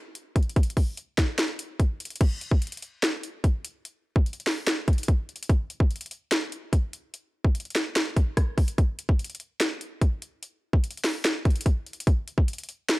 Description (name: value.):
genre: hip hop.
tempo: 146 BPM.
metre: 4/4.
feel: half-time.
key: none.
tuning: none.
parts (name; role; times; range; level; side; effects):
trap drum kit; drums; 0.2-13.0 s; crash cymbal, finger snaps, hi-hat, kick drum, rim click, snare drum; -23 LUFS; equal; none.
room: digital ambience.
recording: dry, gritty hardware recording, transformer saturation.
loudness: -24 LUFS.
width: side -20 dB against mid.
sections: 0.0-2.2 A section; 2.2-13.0 B section.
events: none.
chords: none.